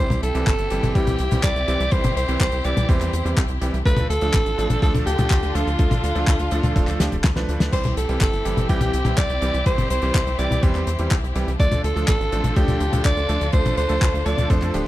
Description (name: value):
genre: italo disco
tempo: 124 BPM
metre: 4/4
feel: straight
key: C major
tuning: A4 = 439 Hz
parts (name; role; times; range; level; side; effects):
- raspy alto saxophone; melody; 0.0-14.9 s; F4 to D5; -25 LUFS; equal; tape echo
- rich studio string section; sustained chords; 0.0-14.9 s; D3 to A4; -29 LUFS; left 2 dB; none
- bright electric grand piano; stabs; 0.0-14.9 s; E3 to B4; -28 LUFS; right 3 dB; none
- tight sequencer bass; bass; 0.0-14.8 s; D1 to F2; -24 LUFS; equal; none
- damped 70s drum kit; drums; 0.1-14.8 s; crash cymbal, handclaps, hi-hat, snare drum, toms; -25 LUFS; left 1 dB; studio reverb
- electronic kick drum; drums; 0.5-14.6 s; none; -20 LUFS; equal; studio reverb
room: studio ambience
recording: dry, close 1970s-style studio recording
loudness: -18 LUFS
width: side -15 dB against mid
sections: 0.0-14.9 A section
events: drum fill 7.0-7.7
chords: 0.0 C; 3.9 Dm; 7.7 C; 11.6 Dm